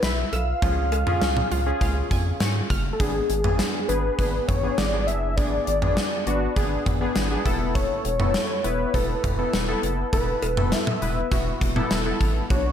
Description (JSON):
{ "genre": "synth-pop", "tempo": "101 BPM", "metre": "4/4", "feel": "straight", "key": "unclear", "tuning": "A4 = 439 Hz", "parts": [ { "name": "fat analog lead", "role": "melody", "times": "0.0-12.7 s", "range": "G#4 to E#5", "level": "-27 LUFS", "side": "left 1 dB", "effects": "chorus, ping-pong delay" }, { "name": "warm analog keys", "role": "accompaniment", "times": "0.0-12.7 s", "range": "B3 to B4", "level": "-28 LUFS", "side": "left 2 dB", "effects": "chorus" }, { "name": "analog pluck", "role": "arpeggios", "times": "0.0-3.0 s", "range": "E#3 to E#6", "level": "-34 LUFS", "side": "right 1 dB", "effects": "chorus, ping-pong delay" }, { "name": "rubbery square bass", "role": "bass", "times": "0.0-12.7 s", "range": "E1 to G#2", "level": "-27 LUFS", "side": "equal", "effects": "none" }, { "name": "gated 80s drum kit", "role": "drums", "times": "0.0-12.6 s", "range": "cowbell, hi-hat, kick drum, snare drum, toms", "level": "-25 LUFS", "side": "equal", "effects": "none" } ], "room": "moderate plate reverb, RT60 1.6 s, studio ambience", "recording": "dreamy mix soaked in reverb", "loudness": "-21 LUFS", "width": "side -9 dB against mid", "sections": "0.0-3.0 A section; 3.0-12.7 B section", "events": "none", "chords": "0.0 E; 0.6 C#; 3.0 G#dim; 7.5 Esus4" }